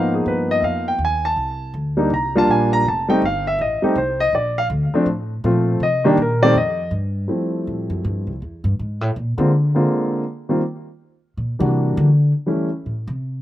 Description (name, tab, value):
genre	jazz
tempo	162 BPM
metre	4/4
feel	swing 65% on 8ths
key	Bb major, F major from 7.3 s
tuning	A4 = 440 Hz
part	warm grand piano	melody	0.0-12.7 s	D3 to Bb5	-18 LUFS	equal	none
part	upright bass	bass	0.0-13.4 s	F1 to D3	-21 LUFS	equal	none
room	little or no reverb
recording	recorded outdoors, with no room sound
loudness	-17 LUFS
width	side -13 dB against mid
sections	0.0-7.3 A section; 7.3-13.4 A section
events	grand piano solo 0.0-7.3; upright bass solo 7.3-13.4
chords	0.0 Abm69; 1.4 C7(no3); 2.9 F7; 4.3 Bbmaj7; 5.8 Cm7; 6.5 Ebadd9/F; 7.3 Fmaj9; 8.8 Bb7; 10.2 Eb5 (rootless); 11.7 Em7b5; 12.5 A7